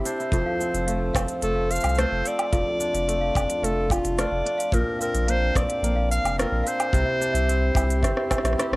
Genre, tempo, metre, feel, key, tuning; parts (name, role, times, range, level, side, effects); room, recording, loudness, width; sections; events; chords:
folktronica; 109 BPM; 4/4; straight; F major; A4 = 439 Hz
celesta; second line; 0.0-8.8 s; E5 to E6; -33 LUFS; equal; cassette tape, analog delay
hand-pumped harmonium; sustained chords; 0.0-8.8 s; C3 to C5; -32 LUFS; right 1 dB; cassette tape
kora; arpeggios; 0.0-8.8 s; F2 to G4; -30 LUFS; equal; cassette tape
warm clarinet; melody; 0.1-8.6 s; F4 to F5; -26 LUFS; equal; cassette tape
organic electronic drum kit; drums; 0.1-8.8 s; hi-hat, rim click, shaker, woodblock; -28 LUFS; equal; overdrive
warm sub bass; bass; 0.3-8.8 s; F1 to C2; -25 LUFS; equal
kick drum; drums; 0.3-8.4 s; -28 LUFS; equal
little or no reverb; home recording on cassette; -21 LUFS; side -22 dB against mid
0.0-8.8 A section
drum fill 8.0-8.8
0.3 F; 2.5 Dm/F; 4.7 Bbadd9; 6.9 C